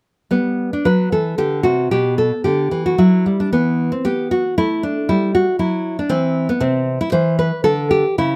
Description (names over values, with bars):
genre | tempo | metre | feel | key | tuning
classical, baroque-style dance for nylon-string guitar | 114 BPM | 3/4 | rubato | G major | A4 = 438 Hz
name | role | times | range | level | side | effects
nylon-string guitar | solo | 0.3-8.4 s | B2 to C5 | -18 LUFS | equal | none
room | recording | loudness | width
little or no reverb | close, detailed microphones | -18 LUFS | mono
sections
0.3-8.4 A section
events
none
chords
0.3 G5; 1.9 G/B; 3.5 E5; 5.1 Em; 6.6 Cmaj13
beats
| 0.32 0.85 1.39 | 1.92 2.45 2.99 | 3.52 4.04 4.57 | 5.08 5.59 6.10 | 6.61 7.13 7.65 | 8.18